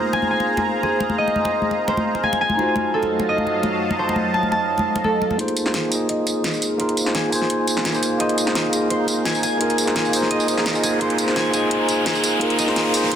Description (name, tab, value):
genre	liquid drum and bass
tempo	171 BPM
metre	4/4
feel	straight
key	Ab major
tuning	A4 = 440 Hz
part	tine electric piano	accompaniment	0.0-13.2 s	A3 to Eb5	-22 LUFS	equal	tape echo
part	lush unison pad	sustained chords	0.0-13.2 s	Gb3 to Bb5	-26 LUFS	equal	chorus, phaser
part	concert harp	arpeggios	0.0-13.2 s	Ab4 to A5	-24 LUFS	equal	low-pass filter, tape echo
part	congas	percussion	0.1-5.4 s	none	-26 LUFS	left 2 dB	none
part	pop drum kit	drums	5.4-13.2 s	hi-hat, snare drum, tambourine	-24 LUFS	equal	high-pass filter on cymbals, low-pass filter on cymbals, small room ambience, high-pass filter on hats, low-pass filter on hats, high-pass filter on perc, low-pass filter on perc, high-pass filter on snare, low-pass filter on snare
part	riser	sound effects	8.1-13.2 s	none	-29 LUFS	left 1 dB	none
room	moderate lush hall reverb, RT60 2.4 s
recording	dense, heavily limited modern master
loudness	-18 LUFS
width	side -9 dB against mid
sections	0.0-5.4 A section; 5.4-13.2 B section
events	filter sweep on harp 0.0-5.4, 5.4-13.2; build-up 5.4-13.2; filter sweep on analog synth pad 5.4-13.2; riser 8.1-13.2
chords	0.0 Ab69; 2.6 F7b9; 5.4 Ab69